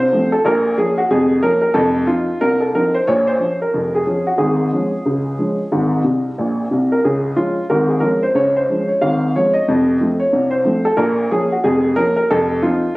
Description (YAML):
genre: ragtime piano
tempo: 91 BPM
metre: 2/4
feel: swing 60% on 16ths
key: Db major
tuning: A4 = 439 Hz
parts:
  - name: warm upright piano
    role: solo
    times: 0.0-12.9 s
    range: F1 to F5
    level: -14 LUFS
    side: equal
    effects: none
room: moderate spring reverb, RT60 2.1 s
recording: recorded on a phone in the room, studio reverb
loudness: -14 LUFS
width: side -20 dB against mid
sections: 0.0-13.0 A section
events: upright piano fill 6.1-7.0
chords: 0.5 Bbm; 1.8 F5; 3.1 Bbm; 4.4 Db/Ab; 5.7 Ab; 7.0 Db; 9.7 F; 11.0 Bbm; 12.3 F5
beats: | 0.45 1.11 | 1.77 2.42 | 3.08 3.74 | 4.40 5.06 | 5.73 6.39 | 7.05 7.71 | 8.37 9.02 | 9.68 10.34 | 10.99 11.65 | 12.31